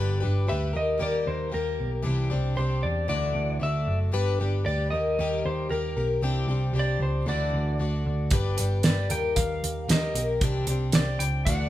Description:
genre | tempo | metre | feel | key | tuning
folk rock and heartland rock | 115 BPM | 4/4 | straight | unclear | A4 = 440 Hz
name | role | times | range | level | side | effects
picked plugged-in twelve-string acoustic guitar | accompaniment | 0.0-11.7 s | G2 to D5 | -30 LUFS | left 4 dB | none
hollow-body short-scale picked electric bass | bass | 0.0-11.7 s | F#1 to E2 | -27 LUFS | right 1 dB | none
lightly driven lead guitar | melody | 0.5-11.7 s | Bb4 to G5 | -30 LUFS | equal | none
damped 70s drum kit | drums | 8.3-11.6 s | hi-hat, kick drum, snare drum | -24 LUFS | right 1 dB | none
room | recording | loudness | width
light reverb | band playing live in one room | -24 LUFS | side -14 dB against mid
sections
0.0-11.7 A section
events
none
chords
0.0 G; 0.7 Eb; 2.0 Cadd9; 3.1 Dadd9; 4.1 G; 4.9 Eb; 6.2 Cadd9; 7.3 Dadd9; 8.3 G; 9.1 Eb; 10.4 Cadd9

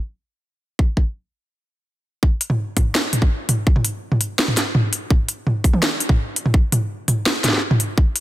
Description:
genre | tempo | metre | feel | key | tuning
drum and bass | 167 BPM | 4/4 | half-time | none | none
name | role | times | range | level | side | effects
electronic kick drum | drums | 0.8-8.0 s | none | -16 LUFS | equal | none
drum and bass drum kit | drums | 2.4-8.2 s | hi-hat, snare drum, toms | -18 LUFS | equal | low-pass filter on hats, low-pass filter on toms, low-pass filter on snare
room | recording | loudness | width
light reverb | dense, heavily limited modern master | -17 LUFS | side -15 dB against mid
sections
0.0-2.2 A section; 2.2-8.2 B section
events
stop 1.5-2.2; drop 2.2-8.2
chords
none

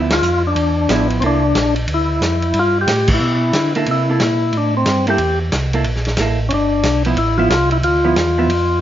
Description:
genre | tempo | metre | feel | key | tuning
soul jazz organ trio | 181 BPM | 4/4 | swing 63% on 8ths | unclear | A4 = 440 Hz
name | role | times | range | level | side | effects
vintage hollow-body jazz guitar | accompaniment | 0.0-1.4, 3.8-8.5 s | F3 to A4 | -21 LUFS | right 4 dB | none
mellow tonewheel organ | bass | 0.0-8.8 s | G1 to D3 | -19 LUFS | equal | chorus vibrato, slow rotary speaker
percussive tonewheel organ | melody | 0.1-8.8 s | C4 to G4 | -17 LUFS | left 2 dB | slow rotary speaker
warm soul drum kit | drums | 0.1-8.6 s | crash cymbal, hi-hat, kick drum, ride cymbal, snare drum | -22 LUFS | equal | none
room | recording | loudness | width
light reverb | nothing above 7.5 kHz | -14 LUFS | side -11 dB against mid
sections
0.0-8.8 A section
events
band accent 0.1, 3.0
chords
0.0 G13 (rootless); 1.2 C13; 2.5 G69; 3.9 C6; 6.5 G13

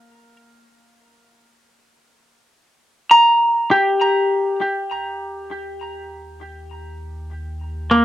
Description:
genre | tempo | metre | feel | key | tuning
ambient | 50 BPM | 4/4 | straight | Eb major | A4 = 442 Hz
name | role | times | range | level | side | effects
semi-hollow electric guitar | arpeggios | 0.0-8.0 s | Bb3 to Bb5 | -15 LUFS | equal | cassette tape, tape echo
warm sub bass | bass | 4.9-8.0 s | Eb2 | -34 LUFS | equal | none
room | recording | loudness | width
wet booth ambience, RT60 0.2 s | home recording on cassette | -14 LUFS | side -13 dB against mid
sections
0.0-4.9 A section; 4.9-8.0 B section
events
none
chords
0.0 Gm/Bb; 4.9 Eb

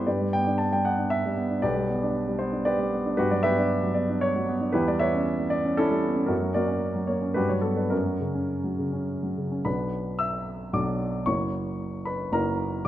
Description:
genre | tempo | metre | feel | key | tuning
classical, romantic character piece for solo piano | 103-119 BPM | 3/4 | rubato | unclear | A4 = 444 Hz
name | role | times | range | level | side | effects
warm grand piano | solo | 0.0-12.9 s | F#1 to E6 | -24 LUFS | equal | none
room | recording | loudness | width
moderate scoring stage reverb, RT60 1.8 s | close, detailed microphones | -24 LUFS | side -13 dB against mid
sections
0.0-9.7 A section; 9.7-12.9 B section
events
none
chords
0.1 G; 1.6 G/B; 3.2 Gmaj7; 4.7 C#m7b5/E; 6.3 F#; 7.4 Gmaj7; 7.9 F#; 9.7 Bm; 11.3 F#7

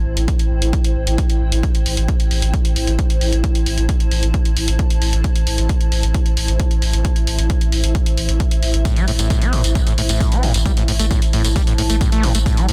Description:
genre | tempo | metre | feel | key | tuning
driving peak-time techno | 133 BPM | 4/4 | straight | A minor | A4 = 439 Hz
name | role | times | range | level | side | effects
granular cloud pad | texture | 0.0-12.7 s | E4 to A5 | -28 LUFS | equal | built-in reverb, sidechain pumping
saturated sub bass | bass | 0.1-12.7 s | A1 | -21 LUFS | equal | sidechain pumping, low-pass filter
electronic hi-hat and tambourine | drums | 0.2-12.7 s | none | -27 LUFS | equal | none
electronic kick drum | drums | 0.3-12.6 s | none | -20 LUFS | equal | none
overdriven acid bass | riff | 8.9-12.7 s | A1 to C4 | -24 LUFS | equal | distortion, subtle chorus, sidechain pumping, tape echo
room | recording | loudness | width
little or no reverb | dense, heavily limited modern master | -17 LUFS | mono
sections
0.0-12.7 A section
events
none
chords
0.0 Am

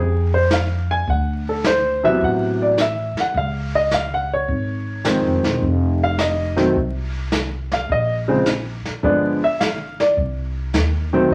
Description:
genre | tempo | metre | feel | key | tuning
jazz piano trio | 106 BPM | 4/4 | swing 69% on 8ths | unclear | A4 = 440 Hz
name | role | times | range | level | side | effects
clear grand piano | melody | 0.0-11.3 s | C3 to Ab5 | -21 LUFS | equal | none
upright bass | bass | 0.0-11.3 s | E1 to F2 | -25 LUFS | equal | none
jazz brush drum kit | drums | 0.5-11.3 s | brushed snare drum, hi-hat, kick drum, snare drum | -27 LUFS | equal | none
room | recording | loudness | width
wet studio reverb, RT60 0.6 s | vinyl crackle | -20 LUFS | mono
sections
0.0-11.3 A section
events
none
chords
0.0 Bb7(no3) (rootless); 1.1 D13; 3.4 Dbmaj9; 5.6 F7(no3); 7.9 N.C.; 9.0 G7b9; 10.2 Cm

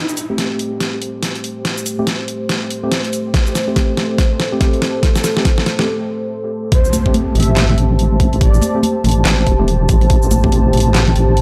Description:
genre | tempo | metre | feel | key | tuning
deep dubstep | 142 BPM | 4/4 | swing 60% on 16ths, half-time | A minor | A4 = 440 Hz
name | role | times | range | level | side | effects
dark analog pad | sustained chords | 0.4-11.4 s | A3 to A5 | -24 LUFS | equal | chorus
dubstep drum kit | drums | 0.1-11.4 s | handclaps, hi-hat, shaker, snare drum | -22 LUFS | equal | overdrive
mellow tine electric piano | stabs | 0.3-11.4 s | A3 to G4 | -25 LUFS | equal | low-pass filter, dub echo
electronic kick drum | drums | 3.3-10.5 s | none | -16 LUFS | equal | overdrive
breathy flute-like synth lead | melody | 6.7-8.8 s | C5 to E5 | -29 LUFS | equal | ensemble chorus, dub echo
impact | sound effects | 6.7-8.4 s | none | -27 LUFS | equal | none
congas | percussion | 6.9-11.1 s | none | -23 LUFS | equal | none
deep soft wobble bass | bass | 7.4-11.4 s | E1 to A1 | -16 LUFS | equal | chorus
room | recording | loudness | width
light reverb | dry, gritty hardware recording | -16 LUFS | mono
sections
0.0-6.7 A section; 6.7-11.4 B section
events
build-up 0.0-6.7; drum fill 0.0-5.9; filter sweep on tine electric piano 0.0-6.7; break 5.9-6.7; drop 6.7-11.4; impact 6.7-8.4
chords
0.0 Am7

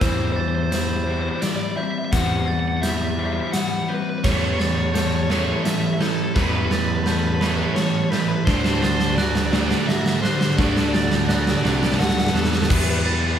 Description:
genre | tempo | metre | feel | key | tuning
post-rock | 85 BPM | 3/4 | straight | unclear | A4 = 440 Hz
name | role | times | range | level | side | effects
raw garage guitar | melody | 0.0-13.4 s | A4 to F#5 | -27 LUFS | left 1 dB | overdrive
pedal harmonium | sustained chords | 0.0-13.4 s | D3 to B5 | -35 LUFS | right 2 dB | none
electric guitar through a small old amp | arpeggios | 0.0-12.7 s | D3 to A4 | -33 LUFS | equal | spring reverb
fuzz guitar | riff | 0.0-13.4 s | D3 to G4 | -27 LUFS | left 7 dB | distortion
fuzz fingered electric bass | bass | 0.0-13.4 s | C2 to E2 | -25 LUFS | equal | overdrive
big rock drum kit | drums | 0.0-12.9 s | crash cymbal, hi-hat, kick drum, snare drum | -22 LUFS | right 1 dB | none
glockenspiel with soft plastic mallets | arpeggios | 0.4-13.4 s | F#6 to A6 | -32 LUFS | right 6 dB | none
sludgy distorted guitar | riff | 4.2-12.7 s | A2 to D4 | -26 LUFS | right 6 dB | overdrive
room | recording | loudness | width
moderate large studio reverb, RT60 0.9 s | band playing live in one room | -18 LUFS | side -9 dB against mid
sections
0.0-12.7 A section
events
build-up 0.0-12.7; drum fill 0.0-12.7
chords
0.0 C/E; 4.2 Aadd9/E; 8.5 D; 12.7 Em7

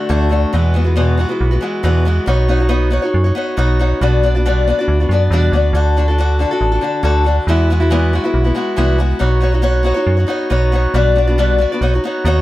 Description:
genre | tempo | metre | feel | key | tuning
folk rock and heartland rock | 138 BPM | 4/4 | straight | E major | A4 = 438 Hz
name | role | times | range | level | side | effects
picked old ladder-braced acoustic guitar | accompaniment | 0.0-12.4 s | E2 to D5 | -16 LUFS | left 2 dB | none
metallic FM bass | bass | 0.1-12.4 s | A1 to F#2 | -14 LUFS | right 1 dB | none
room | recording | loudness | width
light reverb | none | -13 LUFS | side -16 dB against mid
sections
0.0-12.4 A section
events
none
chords
0.0 D; 0.5 Eadd9; 2.3 Badd9; 4.0 Gmaj7/B; 5.8 D; 7.5 Eadd9; 9.2 Badd9; 11.0 Gmaj7/B; 11.8 Badd9

